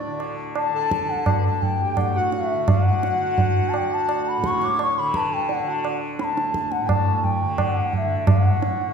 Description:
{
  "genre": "indian classical, Hindustani",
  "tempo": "85 BPM",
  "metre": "4/4",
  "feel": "straight",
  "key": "D raga bilaval",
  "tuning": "A4 = 442 Hz",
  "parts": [
    { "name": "mellow bansuri", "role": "melody", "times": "0.0-8.9 s", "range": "D5 to D6", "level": "-24 LUFS", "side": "left 3 dB", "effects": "none" },
    { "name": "hand-pumped harmonium", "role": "second line", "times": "0.0-6.0 s", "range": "D4 to C#5", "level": "-29 LUFS", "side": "right 6 dB", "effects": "none" },
    { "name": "tanpura", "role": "drone", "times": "0.0-8.9 s", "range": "D2 to D3", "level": "-31 LUFS", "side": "left 1 dB", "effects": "none" },
    { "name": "tabla", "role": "percussion", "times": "0.2-8.9 s", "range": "none", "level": "-22 LUFS", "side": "right 2 dB", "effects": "none" }
  ],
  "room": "wet recital hall reverb, RT60 1.4 s",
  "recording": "recorded in a church or concert hall",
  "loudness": "-19 LUFS",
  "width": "side -6 dB against mid",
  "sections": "0.0-8.3 A section",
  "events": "none",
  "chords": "none"
}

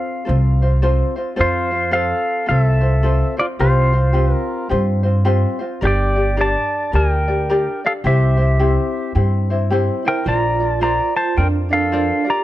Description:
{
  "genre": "Hawaiian",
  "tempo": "108 BPM",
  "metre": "4/4",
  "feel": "swing 62% on 8ths",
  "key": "F major",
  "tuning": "A4 = 440 Hz",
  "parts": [
    { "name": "pedal steel guitar", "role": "melody", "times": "0.0-12.4 s", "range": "F4 to Bb5", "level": "-20 LUFS", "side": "equal", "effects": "none" },
    { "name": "ukulele", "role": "accompaniment", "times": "0.0-12.4 s", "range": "C4 to D5", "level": "-22 LUFS", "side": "left 2 dB", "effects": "none" },
    { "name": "upright bass", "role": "bass", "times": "0.3-12.1 s", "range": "G1 to G2", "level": "-17 LUFS", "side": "equal", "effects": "none" },
    { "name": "vibraphone with soft mallets", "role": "second line", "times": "10.0-12.4 s", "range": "D4 to G4", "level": "-22 LUFS", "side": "right 8 dB", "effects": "none" }
  ],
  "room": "small room ambience",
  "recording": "dry, close 1970s-style studio recording",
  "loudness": "-15 LUFS",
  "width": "side -14 dB against mid",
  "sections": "0.0-1.4 A section; 1.4-12.4 A section",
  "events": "none",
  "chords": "0.0 F; 3.6 Csus4; 5.8 Gm; 8.0 C; 10.3 Bbadd9"
}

